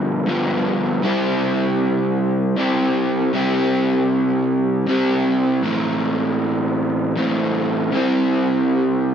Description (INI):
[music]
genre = rock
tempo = 52 BPM (dotted quarters)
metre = 6/8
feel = straight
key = unclear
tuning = A4 = 440 Hz
[part]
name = crunchy overdriven guitar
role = solo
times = 0.0-9.1 s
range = G2 to G4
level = -17 LUFS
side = equal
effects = none
[sound]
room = light reverb, digital ambience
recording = none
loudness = -17 LUFS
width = side -8 dB against mid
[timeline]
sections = 0.0-5.6 A section; 5.6-9.1 B section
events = none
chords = 0.0 G7; 1.0 C; 5.6 Am; 7.9 C